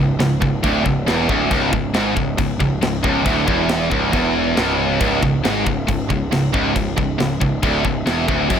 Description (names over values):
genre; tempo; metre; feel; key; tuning
heavy metal; 137 BPM; 4/4; straight; C# minor; A4 = 435 Hz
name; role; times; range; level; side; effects
scooped high-gain guitar; riff; 0.0-8.6 s; C#2 to G#2; -20 LUFS; left 6 dB; distortion
tight distorted guitar; riff; 0.0-8.6 s; C#2 to G#2; -22 LUFS; right 12 dB; distortion
fuzz picked electric bass; bass; 0.0-8.6 s; C#1 to G#1; -24 LUFS; equal; overdrive
tight metal drum kit; drums; 0.2-8.6 s; crash cymbal, kick drum, snare drum; -23 LUFS; equal; none
room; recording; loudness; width
light reverb; none; -16 LUFS; side -8 dB against mid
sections
0.0-8.6 A section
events
none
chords
0.0 C#m